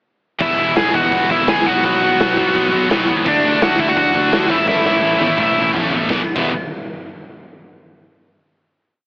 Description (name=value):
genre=punk rock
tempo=169 BPM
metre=4/4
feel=straight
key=E major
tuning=A4 = 442 Hz
part: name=smooth overdriven lead guitar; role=melody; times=0.4-5.7 s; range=D4 to G#5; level=-15 LUFS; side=equal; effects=none
part: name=distorted electric guitar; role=riff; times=0.4-6.5 s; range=E2 to D4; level=-19 LUFS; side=equal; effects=distortion
part: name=high-gain distorted guitar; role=riff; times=0.4-6.5 s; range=A2 to F#4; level=-22 LUFS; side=equal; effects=distortion
part: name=picked electric bass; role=bass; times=0.4-6.5 s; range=E1 to D#2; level=-28 LUFS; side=equal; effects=none
part: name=raw garage drum kit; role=drums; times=0.4-6.4 s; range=crash cymbal, hi-hat, kick drum, snare drum, toms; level=-20 LUFS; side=equal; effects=none
room=light reverb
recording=heavily compressed radio sound, AM radio sound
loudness=-13 LUFS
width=side -28 dB against mid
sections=0.4-6.1 verse; 6.1-7.5 final chord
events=drum fill 4.7-6.1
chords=0.4 E; 1.7 B; 3.3 D; 4.5 A; 6.1 E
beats=| 0.41 0.77 1.13 1.48 | 1.84 2.20 2.55 2.91 | 3.26 3.61 3.97 4.32 | 4.68 5.03 5.38 5.74 | 6.09 6.45